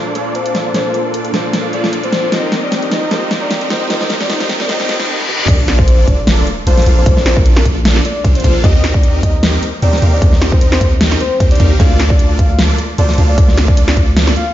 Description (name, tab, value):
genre	future bass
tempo	152 BPM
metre	4/4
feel	swing 54% on 16ths, half-time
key	Bb major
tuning	A4 = 436 Hz
part	warm grand piano	accompaniment	0.0-5.5 s	Bb2 to C5	-25 LUFS	right 1 dB	sidechain pumping, dub echo
part	supersaw chords	riff	0.0-14.3 s	Bb3 to F5	-19 LUFS	right 1 dB	phaser, sidechain pumping, low-pass filter, dub echo
part	riser, reverse cymbal and sub drop	sound effects	1.3-7.1 s	none	-23 LUFS	equal	none
part	big-room dance drum kit	drums	0.2-14.4 s	crash cymbal, hi-hat, snare drum, toms	-18 LUFS	equal	none
part	soft octave-layered synth lead	melody	0.3-14.5 s	Bb4 to F5	-21 LUFS	left 2 dB	chorus, tremolo, sidechain pumping, tape echo
part	long sustained 808-style bass	bass	5.5-14.3 s	Bb1 to Eb2	-12 LUFS	equal	sidechain pumping
part	electronic kick drum	drums	5.5-14.1 s	none	-12 LUFS	equal	none
room	light reverb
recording	played on a big sound system in a bare room, stone room reverb, high-pass filter, nothing above 7.5 kHz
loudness	-10 LUFS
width	side -13 dB against mid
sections	0.0-5.5 A section; 5.5-14.5 B section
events	build-up 0.0-5.5; drum fill 0.0-5.1, 5.2; filter sweep on supersaw synth 0.0-5.5; filter sweep 0.0-5.5; riser 1.3-5.1; reverse cymbal 4.7-5.5; drop 5.5-14.5; impact 5.5-7.1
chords	0.0 Bbmaj7; 2.3 Eb6; 5.5 Bbmaj7; 8.6 Eb6; 11.8 Bbmaj7/D